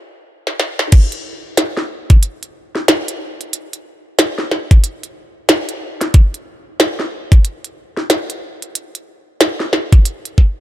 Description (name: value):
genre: glitch hop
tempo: 92 BPM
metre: 4/4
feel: swing 61% on 16ths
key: none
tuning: none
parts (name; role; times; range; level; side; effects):
- glitchy drum kit; drums; 0.5-10.4 s; crash cymbal, hi-hat, snare drum; -16 LUFS; equal; overdrive
- electronic kick drum; drums; 0.9-10.5 s; none; -7 LUFS; equal; high-pass filter on kick
room: little or no reverb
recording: high-pass filter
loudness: -13 LUFS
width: side -14 dB against mid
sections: 0.9-10.6 A section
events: stop 0.0-0.9; drum fill 0.4-0.9; drop 0.9-10.6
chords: none